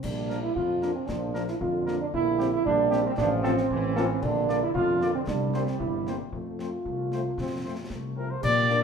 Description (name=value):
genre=military-style march for wind band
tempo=114 BPM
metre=2/4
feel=straight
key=F major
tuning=A4 = 443 Hz
part: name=warm euphonium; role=second line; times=0.0-8.8 s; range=Bb3 to G4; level=-27 LUFS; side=right 3 dB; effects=none
part: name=warm trombone section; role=sustained chords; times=0.0-8.8 s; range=D3 to D4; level=-36 LUFS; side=right 1 dB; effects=none
part: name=mellow tuba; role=bass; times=0.0-8.8 s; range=G1 to Bb2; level=-31 LUFS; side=left 1 dB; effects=none
part: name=clash cymbals, concert bass drum and concert snare drum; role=drums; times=0.0-8.8 s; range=none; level=-37 LUFS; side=left 3 dB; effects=none
part: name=warm cornet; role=melody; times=0.3-8.8 s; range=G4 to D5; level=-30 LUFS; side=equal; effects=none
part: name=dark French horn section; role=accompaniment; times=0.3-8.8 s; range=F3 to F4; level=-34 LUFS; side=left 5 dB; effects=none
part: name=bright large flute ensemble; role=second line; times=8.2-8.8 s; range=Bb4 to D5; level=-33 LUFS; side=left 1 dB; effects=none
room=wet large studio reverb, RT60 1.1 s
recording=heard from further back in the room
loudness=-24 LUFS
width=side -6 dB against mid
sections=0.0-8.4 A section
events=none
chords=0.0 Bb; 2.1 C5/Bb; 3.2 F/A; 4.2 Bb; 5.3 C5; 6.3 F